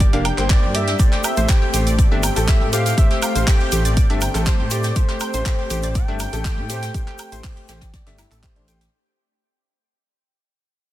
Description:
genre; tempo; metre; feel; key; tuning
progressive house; 121 BPM; 4/4; straight; unclear; A4 = 440 Hz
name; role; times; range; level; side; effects
lush unison pad; sustained chords; 0.0-8.9 s; A3 to G4; -30 LUFS; right 1 dB; chorus, sidechain pumping
wide unison pluck; arpeggios; 0.0-8.8 s; D4 to G6; -28 LUFS; right 1 dB; sidechain pumping, dub echo
dark detuned saw bass; bass; 0.0-8.9 s; F1 to A2; -23 LUFS; equal; sidechain pumping
electronic kick drum; drums; 0.0-8.5 s; none; -17 LUFS; equal; none
house drum kit; drums; 0.0-8.9 s; handclaps, hi-hat, woodblock; -27 LUFS; right 3 dB; soft clipping on snare
jazz brush drum kit; drums; 0.0-8.9 s; hi-hat, snare drum; -34 LUFS; left 2 dB; none
clear grand piano; stabs; 0.1-8.8 s; A3 to F5; -28 LUFS; left 3 dB; vintage 12-bit sampler grit, sidechain pumping, dub echo
warm velvety synth lead; melody; 0.5-8.4 s; C5 to G5; -28 LUFS; equal; chorus, sidechain pumping, dub echo
egg shaker; percussion; 1.0-8.9 s; none; -31 LUFS; left 6 dB; none
room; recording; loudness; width
little or no reverb; dense, heavily limited modern master; -16 LUFS; side -14 dB against mid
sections
0.0-8.9 A section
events
drop 0.0-8.9; fade-out 3.6-8.9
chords
0.0 Gm; 1.0 Am7

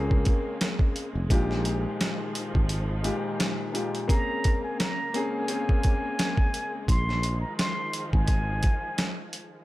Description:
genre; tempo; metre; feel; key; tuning
hip hop, boom-bap hip-hop; 86 BPM; 4/4; swing 57% on 16ths; Bb dorian; A4 = 442 Hz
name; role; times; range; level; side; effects
dark baby grand piano; accompaniment; 0.0-6.8 s; Bb2 to Ab4; -31 LUFS; left 2 dB; high-pass filter, low-pass filter
warm studio string section; sustained chords; 0.0-9.6 s; Db3 to Bb3; -37 LUFS; equal; high-pass filter, low-pass filter
sustaining fretless electric bass; bass; 0.0-8.7 s; F1 to Db2; -28 LUFS; equal; none
boom bap sampler-style drum kit; drums; 0.1-9.5 s; hi-hat, kick drum, snare drum; -25 LUFS; equal; none
trumpet with plunger mute; melody; 4.1-9.1 s; Ab5 to C6; -32 LUFS; equal; high-pass filter, low-pass filter, digital delay
room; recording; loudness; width
small room ambience; none; -24 LUFS; side -17 dB against mid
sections
0.0-4.1 A section; 4.1-9.6 A section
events
break 2.7-4.1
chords
0.0 Bbm9; 1.3 Fm9; 4.1 Bbm9; 6.9 Fm7

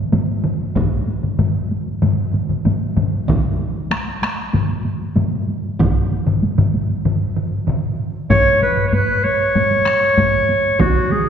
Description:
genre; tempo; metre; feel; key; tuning
japanese traditional, taiko drum ensemble; 96 BPM; 4/4; straight; unclear; A4 = 440 Hz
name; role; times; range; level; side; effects
solo taiko drums; percussion; 0.1-11.3 s; none; -23 LUFS; right 4 dB; none
taiko ensemble; percussion; 0.1-11.3 s; none; -24 LUFS; equal; none
taiko ensemble; percussion; 0.1-10.3 s; none; -20 LUFS; left 2 dB; none
taiko ensemble; percussion; 0.8-10.9 s; none; -22 LUFS; right 1 dB; none
warm clarinet; melody; 8.3-11.3 s; F#4 to C#5; -15 LUFS; equal; none
room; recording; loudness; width
wet concert hall reverb, RT60 1.9 s; recorded in a church or concert hall; -15 LUFS; side -8 dB against mid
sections
0.0-8.3 A section; 8.3-11.3 B section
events
stop 7.1-8.3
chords
none

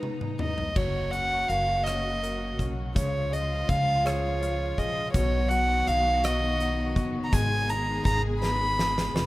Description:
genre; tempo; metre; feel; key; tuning
six-eight pop ballad; 55 BPM (dotted quarters); 6/8; straight; F# major; A4 = 440 Hz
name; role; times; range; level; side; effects
warm violin; melody; 0.0-9.2 s; C#5 to B5; -27 LUFS; right 1 dB; digital delay
clear concert grand piano; accompaniment; 0.0-9.3 s; G#2 to B4; -38 LUFS; left 3 dB; plate reverb
warm studio string section; sustained chords; 0.0-9.3 s; C#3 to A#5; -33 LUFS; left 1 dB; plate reverb
huge arena drum kit; drums; 0.0-9.3 s; crash cymbal, hi-hat, kick drum, rim click, snare drum, toms; -31 LUFS; equal; none
upright bass; bass; 0.8-9.3 s; E#1 to C#2; -30 LUFS; equal; none
room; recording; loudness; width
light reverb; rough home demo mix; -24 LUFS; side -18 dB against mid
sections
0.8-9.3 A section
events
drum fill 0.0-0.8, 8.4-9.3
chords
0.0 G#madd9; 0.8 F#; 3.0 C#; 5.1 B; 7.3 G#m

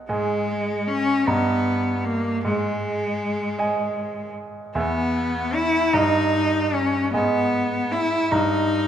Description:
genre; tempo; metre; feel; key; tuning
classical, romantic duo for cello and grand piano; 51 BPM (dotted quarters); 6/8; rubato; G# minor from 4.8 s; A4 = 440 Hz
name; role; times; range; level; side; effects
bright grand piano; accompaniment; 0.0-8.9 s; E2 to A#5; -25 LUFS; right 2 dB; none
clear cello; melody; 0.1-8.9 s; G#3 to E4; -22 LUFS; left 1 dB; none
room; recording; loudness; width
wet recital hall reverb, RT60 1.4 s; none; -20 LUFS; side -9 dB against mid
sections
0.0-8.9 A section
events
none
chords
0.1 G#5; 1.3 D#/G; 2.4 G#5; 4.8 E; 5.9 D#/G; 7.1 G#m; 8.3 D#/G

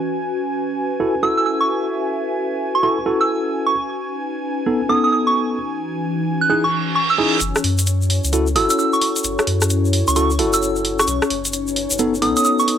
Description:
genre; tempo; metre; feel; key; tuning
UK garage, two-step garage; 131 BPM; 4/4; swing 64% on 16ths; F# dorian; A4 = 443 Hz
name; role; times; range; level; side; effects
airy breathy pad; sustained chords; 0.0-12.8 s; C#5 to G#5; -30 LUFS; equal; chorus
warbly tape-like pad; texture; 0.0-12.8 s; E3 to E5; -25 LUFS; left 2 dB; chorus, built-in reverb
mellow tine electric piano; stabs; 1.0-12.8 s; B3 to A4; -20 LUFS; equal; medium stereo tremolo, low-pass filter
soft synth bell; melody; 1.2-12.7 s; C#6 to F#6; -19 LUFS; right 2 dB; chorus, tape echo
reverse cymbal; sound effects; 6.7-7.4 s; none; -21 LUFS; right 6 dB; none
saturated sub bass; bass; 7.4-12.3 s; F#1 to F#2; -21 LUFS; equal; none
garage drum kit; drums; 7.4-12.8 s; hi-hat, rim click; -22 LUFS; equal; high-pass filter on cymbals, high-pass filter on hats, high-pass filter on snare
egg shaker; percussion; 7.4-12.7 s; none; -24 LUFS; left 3 dB; none
room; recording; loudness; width
light reverb; dry, gritty hardware recording; -16 LUFS; side -9 dB against mid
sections
0.0-7.4 A section; 7.4-12.8 B section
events
filter sweep on analog synth pad 0.0-7.4; reverse cymbal 6.7-7.4; build-up 7.4-12.8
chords
0.1 F#m7; 3.7 B7; 5.6 Emaj7; 7.4 F#m7; 11.1 B7

